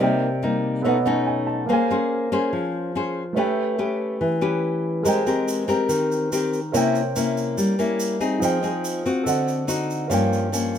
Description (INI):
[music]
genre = bossa nova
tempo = 142 BPM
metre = 4/4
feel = straight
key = unclear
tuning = A4 = 440 Hz
[part]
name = nylon-string guitar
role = accompaniment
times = 0.0-10.8 s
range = G2 to C5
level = -21 LUFS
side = left 2 dB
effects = none
[part]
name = warm baby grand piano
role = accompaniment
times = 0.0-10.8 s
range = F3 to A5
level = -26 LUFS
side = right 4 dB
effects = none
[part]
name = tube shaker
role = percussion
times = 5.1-10.8 s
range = none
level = -33 LUFS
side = right 5 dB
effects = none
[sound]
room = light reverb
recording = minimal, uncompressed stereo recording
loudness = -20 LUFS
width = side -9 dB against mid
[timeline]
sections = 0.0-10.8 A section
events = grand piano fill 0.8-1.7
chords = 0.0 Cm7; 0.8 B9; 1.7 Bbm9; 3.4 A9; 5.0 Abmaj9; 6.7 C7b9; 8.4 Fm7; 9.3 D7b9; 10.1 Gm7b5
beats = 0.41 0.83 1.25 | 1.67 2.10 2.52 2.94 | 3.36 3.78 4.20 4.62 | 5.04 5.47 5.89 6.31 | 6.73 7.15 7.58 8.00 | 8.42 8.84 9.26 9.68 | 10.11 10.53